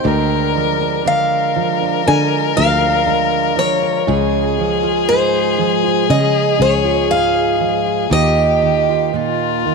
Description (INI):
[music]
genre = acoustic folk-pop ballad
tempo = 60 BPM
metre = 4/4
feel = straight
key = unclear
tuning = A4 = 440 Hz
[part]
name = picked steel-string acoustic guitar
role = melody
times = 0.0-9.7 s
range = C5 to Ab5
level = -18 LUFS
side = equal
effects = none
[part]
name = dark violin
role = second line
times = 0.0-9.7 s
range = F4 to Bb4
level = -19 LUFS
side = left 12 dB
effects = none
[part]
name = fingerpicked steel-string acoustic guitar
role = accompaniment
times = 0.0-9.7 s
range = Eb2 to Bb4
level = -19 LUFS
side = right 13 dB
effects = none
[part]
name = fingered electric bass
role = bass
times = 0.0-9.7 s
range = Db2 to D3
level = -20 LUFS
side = left 1 dB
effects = none
[sound]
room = moderate plate reverb, RT60 3.9 s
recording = 1960s-style stereo with parts hard left and right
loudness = -13 LUFS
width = side -4 dB against mid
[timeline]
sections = 0.0-9.7 A section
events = none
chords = 0.1 Bb7/D; 4.1 Dbmaj7; 8.1 Ebadd9